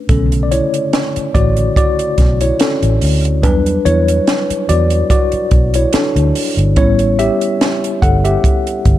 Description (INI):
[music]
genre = lush 1970s-style soul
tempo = 72 BPM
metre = 4/4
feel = swing 54% on 16ths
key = B minor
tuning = A4 = 440 Hz
[part]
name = mellow tine electric piano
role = accompaniment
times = 0.0-9.0 s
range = C#3 to F#5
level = -15 LUFS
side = left 1 dB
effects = medium stereo tremolo
[part]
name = vintage muted fingered electric bass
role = bass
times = 0.1-9.0 s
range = G1 to E2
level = -14 LUFS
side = equal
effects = none
[part]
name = compact cocktail drum kit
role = drums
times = 0.1-9.0 s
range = hi-hat, kick drum, snare drum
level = -15 LUFS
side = equal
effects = none
[sound]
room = light reverb, small room reverb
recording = dark, warm production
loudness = -11 LUFS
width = side -13 dB against mid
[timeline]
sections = 0.1-9.0 A section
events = tine electric piano solo 0.1-9.0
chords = 0.1 Bm9; 3.4 Em9; 6.8 A9